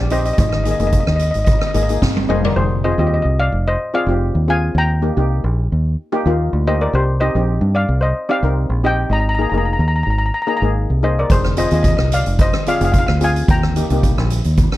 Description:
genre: calypso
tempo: 110 BPM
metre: 4/4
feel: swing 53% on 16ths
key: unclear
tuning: A4 = 440 Hz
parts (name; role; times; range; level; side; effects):
- steel pan; melody; 0.0-14.8 s; G4 to Bb5; -20 LUFS; left 1 dB; none
- fingered electric bass; bass; 0.0-14.7 s; F1 to G2; -17 LUFS; equal; none
- steel pan; accompaniment; 0.1-14.5 s; Bb3 to Bb4; -23 LUFS; left 2 dB; none
- street-band drum kit; drums; 0.1-2.6, 11.3-14.8 s; hi-hat, kick drum, rim click, snare drum, toms; -18 LUFS; equal; none
room: little or no reverb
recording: none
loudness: -14 LUFS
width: side -16 dB against mid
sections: 0.0-2.6 A section; 2.6-14.8 A section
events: drum fill 2.0-2.6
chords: 0.4 Absus2; 2.6 Fm7; 4.8 Eb; 6.9 Cmadd9; 9.1 Absus2; 11.3 Fm7; 13.5 Eb6

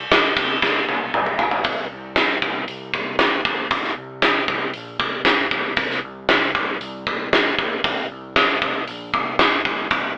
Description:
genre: hard rock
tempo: 116 BPM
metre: 4/4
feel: straight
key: C minor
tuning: A4 = 440 Hz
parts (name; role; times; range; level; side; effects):
- overdriven picked electric bass; bass; 0.0-10.1 s; G1 to C3; -37 LUFS; equal; none
- gated 80s drum kit; drums; 0.1-10.0 s; hi-hat, kick drum, ride cymbal, snare drum, toms; -20 LUFS; equal; none
room: light reverb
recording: band playing live in one room, telephone sound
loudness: -20 LUFS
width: mono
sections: 0.0-1.7 A section; 1.7-10.2 B section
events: drum fill 0.6-1.7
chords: none

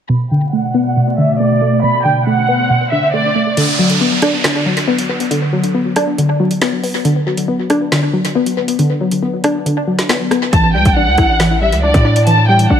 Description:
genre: hip hop, drill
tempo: 138 BPM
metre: 4/4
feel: half-time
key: unclear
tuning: A4 = 442 Hz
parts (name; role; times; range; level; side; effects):
- warm studio violin section; melody; 0.1-3.5, 10.5-12.8 s; D5 to B5; -16 LUFS; right 1 dB; low-pass filter, tape echo
- warbly dusty pluck; accompaniment; 0.1-12.8 s; B2 to E4; -15 LUFS; left 1 dB; chorus, low-pass filter, tape echo
- warbly tape-like pad; sustained chords; 0.5-3.5 s; B2 to D5; -18 LUFS; equal; chorus, built-in reverb, low-pass filter
- swell and downlifter; sound effects; 2.6-7.0 s; none; -21 LUFS; right 2 dB; none
- drill drum kit; drums; 3.6-12.7 s; crash cymbal, finger snaps, hi-hat, kick drum, rim click, snare drum; -19 LUFS; equal; tape echo
- hard-hitting 808-style bass; bass; 10.5-12.8 s; A1 to A2; -14 LUFS; equal; none
room: light reverb, digital ambience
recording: echo-heavy mix, vinyl crackle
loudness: -12 LUFS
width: side -8 dB against mid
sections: 0.1-3.6 A section; 3.6-12.8 B section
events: filter sweep 0.1-3.6; swell 2.6-3.6; kick muted 3.6-10.5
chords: 0.1 Bm7; 3.6 D6; 10.5 A7sus4

